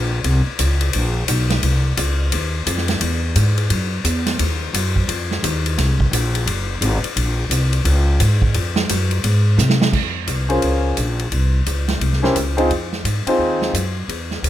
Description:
jazz, big band swing; 173 BPM; 4/4; swing 63% on 8ths; Bb minor; A4 = 440 Hz
upright bass; bass; 0.0-14.5 s; Gb1 to C3; -18 LUFS; equal
swinging big-band drum kit; drums; 0.2-14.5 s; crash cymbal, hi-hat, kick drum, ride cymbal, snare drum; -21 LUFS; equal
clear concert grand piano; accompaniment; 10.5-13.7 s; C4 to C5; -18 LUFS; left 1 dB
little or no reverb; close, detailed microphones; -16 LUFS; side -12 dB against mid
0.0-9.9 A section; 9.9-14.5 B section
drum fill 9.6-9.9
0.0 Bbmadd9; 1.6 F5; 3.0 Eadd9; 4.4 Ebmadd9; 5.8 Bbsus2; 6.5 Gbsus2; 7.2 Bbm9; 11.3 C5; 12.7 Fm7

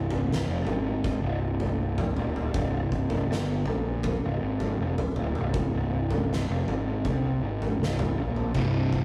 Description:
stoner and doom metal; 80 BPM; 4/4; straight; C minor; A4 = 438 Hz
fuzz picked electric bass; bass; 0.0-9.0 s; C1 to C2; -30 LUFS; equal; overdrive, tube saturation
oversized low-tuned drum kit; drums; 0.1-9.0 s; kick drum, snare drum, toms; -32 LUFS; equal
fuzz guitar; riff; 8.6-9.0 s; C2 to C3; -26 LUFS; equal; distortion
light reverb; rough rehearsal-room recording, warm saturation; -28 LUFS; mono
0.0-9.0 A section

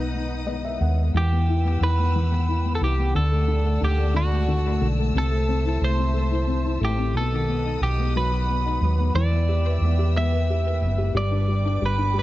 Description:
six-eight pop ballad; 60 BPM (dotted quarters); 6/8; straight; E minor; A4 = 440 Hz
twelve-string electric guitar; melody; 0.0-12.2 s; D#4 to E5; -28 LUFS; right 1 dB; ping-pong delay
felt-muted upright piano; accompaniment; 0.0-12.2 s; B2 to F#5; -27 LUFS; left 4 dB
warm studio string section; sustained chords; 0.0-12.2 s; B4 to E6; -36 LUFS; left 1 dB
hollow-body short-scale fingered electric bass; bass; 0.0-12.2 s; F#1 to E2; -22 LUFS; right 1 dB
small room ambience; dark, warm production, nothing above 7.9 kHz; -20 LUFS; side -15 dB against mid
0.0-1.1 A section; 1.1-12.2 B section
felt piano fill 0.1-1.1
0.0 B; 1.1 Emadd9; 3.1 Dadd9; 5.1 Am/C; 7.1 B; 9.1 Em; 11.1 G

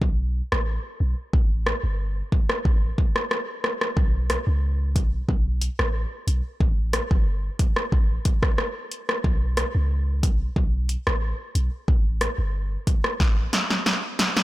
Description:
dancehall; 91 BPM; 4/4; straight; A4 = 440 Hz
clean 808-style bass; bass; 0.0-13.5 s; G1 to C#2; -24 LUFS; equal
deep house drum kit; drums; 0.0-14.4 s; hi-hat, kick drum, rim click, snare drum; -22 LUFS; equal; soft clipping on snare
little or no reverb; blown-out, overdriven recording, overdrive; -21 LUFS; side -17 dB against mid
0.0-14.4 A section
break 0.0-4.0; drum fill 13.2-14.4

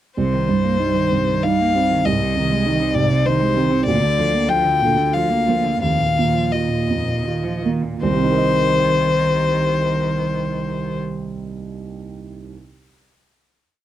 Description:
neoclassical piano and strings; 79-100 BPM; 3/4; rubato; C minor; A4 = 440 Hz
rich violin; melody; 0.2-11.0 s; C5 to G5; -20 LUFS; left 5 dB
rich cello; second line; 0.2-11.0 s; F2 to Bb3; -23 LUFS; right 2 dB
dark grand piano; accompaniment; 0.2-12.5 s; C2 to Eb5; -21 LUFS; right 4 dB
light reverb; dry, close 1970s-style studio recording; -16 LUFS; side -12 dB against mid
0.2-8.0 theme; 8.0-12.5 final chord
slowing down 3.0-8.0
0.2 Cm; 2.1 Ab/C; 3.9 Bb/D; 5.8 Ebsus2; 8.0 Cm7

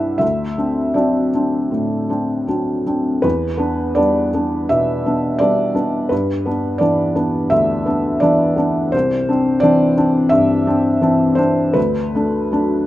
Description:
neoclassical minimalist piano; 77-87 BPM; 4/4; rubato; A4 = 440 Hz
felt-muted upright piano; solo; 0.0-12.9 s; C2 to F#5; -15 LUFS; equal
light reverb, small room reverb; rough home demo mix; -15 LUFS; side -15 dB against mid
0.0-12.9 A section
0.2 D7; 3.2 Em7; 6.1 G6; 8.9 Cadd9; 11.8 D

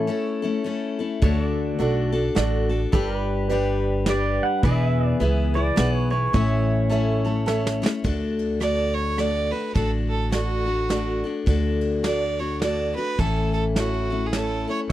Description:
honky-tonk and classic country; 105 BPM; 3/4; swing 60% on 8ths; D major; A4 = 440 Hz
pedal steel guitar; second line; 0.0-1.0, 4.1-7.4 s; C#5 to F#5; -28 LUFS; right 3 dB
picked steel-string acoustic guitar; accompaniment; 0.0-14.9 s; A2 to C#5; -26 LUFS; left 5 dB
pedal steel guitar; sustained chords; 0.0-8.0, 14.9 s; A4 to E5; -32 LUFS; right 4 dB; lush chorus
upright bass; bass; 1.2-14.6 s; E1 to D2; -25 LUFS; right 1 dB
soft brush drum kit; drums; 1.2-14.9 s; hi-hat, kick drum, ride cymbal, rim click, snare drum; -24 LUFS; right 1 dB
warm baby grand piano; accompaniment; 1.8-14.8 s; E4 to A5; -30 LUFS; right 6 dB
clear fiddle; melody; 8.6-14.8 s; F#4 to D5; -27 LUFS; right 3 dB
little or no reverb; dry, close 1970s-style studio recording; -20 LUFS; side -13 dB against mid
0.0-8.1 A section; 8.1-14.9 B section
pedal steel guitar solo 0.0-8.1; grand piano fill 6.9-8.1; drum fill 7.5-8.1
0.0 A; 1.2 D; 2.9 G; 4.6 E; 6.3 A; 8.1 D; 13.2 A

